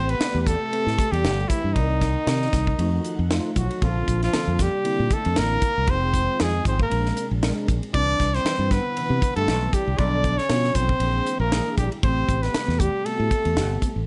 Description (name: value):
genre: electric jazz fusion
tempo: 117 BPM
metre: 4/4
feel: swing 55% on 16ths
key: unclear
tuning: A4 = 439 Hz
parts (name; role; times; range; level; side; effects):
- clear trumpet; melody; 0.0-14.1 s; Eb4 to D5; -28 LUFS; equal; slapback echo
- breathy trombone; second line; 0.0-14.1 s; Eb3 to D4; -33 LUFS; equal; none
- tine electric piano; accompaniment; 0.0-13.9 s; C3 to D5; -34 LUFS; equal; ensemble chorus
- ensemble organ-string; sustained chords; 0.0-14.1 s; C3 to Gb5; -39 LUFS; equal; none
- fingered electric bass; bass; 0.0-14.0 s; F1 to C3; -26 LUFS; equal; none
- crisp fusion drum kit; drums; 0.1-14.0 s; hi-hat, kick drum, ride cymbal, snare drum; -28 LUFS; equal; none
room: light reverb, small room ambience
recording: nothing above 10.9 kHz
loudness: -23 LUFS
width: mono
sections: 0.0-14.1 A section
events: none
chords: 0.0 Am9; 1.8 Cm9; 2.8 F7b9; 3.8 Bbmaj9; 5.9 Fm7; 6.9 Bb9; 7.9 Cmaj9; 10.0 Bm7b5; 11.0 Bb7#11; 12.0 Am9